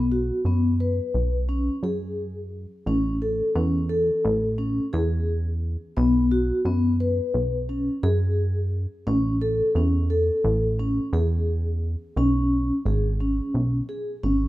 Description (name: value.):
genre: contemporary instrumental, chamber music in an uneven meter.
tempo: 174 BPM (eighths).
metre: 9/8.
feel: straight.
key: unclear.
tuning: A4 = 440 Hz.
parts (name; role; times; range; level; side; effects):
vibraphone with soft mallets; arpeggios; 0.0-14.5 s; B3 to B4; -24 LUFS; left 1 dB; none.
plucky analog bass; bass; 0.0-14.5 s; G#1 to F#2; -24 LUFS; right 1 dB; none.
room: moderate recital hall reverb, RT60 1.6 s.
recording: none.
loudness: -21 LUFS.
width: side -16 dB against mid.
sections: 0.0-12.2 A section; 12.2-14.5 B section.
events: none.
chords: 0.0 B5; 2.9 A; 6.0 B5; 9.1 A; 12.2 C#5.